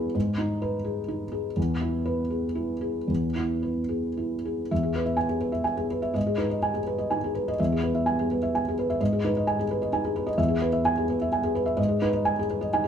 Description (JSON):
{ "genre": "neoclassical minimalist piano", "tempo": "108-133 BPM", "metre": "3/4", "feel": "rubato", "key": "E major", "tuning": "A4 = 440 Hz", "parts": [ { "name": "felt-muted upright piano", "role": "solo", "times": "0.0-12.9 s", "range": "E2 to G#5", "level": "-24 LUFS", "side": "equal", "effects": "none" } ], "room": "moderate studio reverb, RT60 0.9 s", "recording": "band playing live in one room", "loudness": "-24 LUFS", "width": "side -8 dB against mid", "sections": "0.0-4.7 A section; 4.7-12.9 A section", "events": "none", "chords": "0.1 G#m; 1.6 E; 6.2 G#m; 7.6 E; 9.0 G#m; 10.4 E; 11.8 G#m", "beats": "| 0.15 0.62 1.09 | 1.56 2.05 2.55 | 3.09 3.63 4.18 | 4.71 5.20 5.68 | 6.16 6.63 7.11 | 7.59 8.06 8.54 | 9.00 9.47 9.93 | 10.38 10.85 11.31 | 11.78 12.25 12.72" }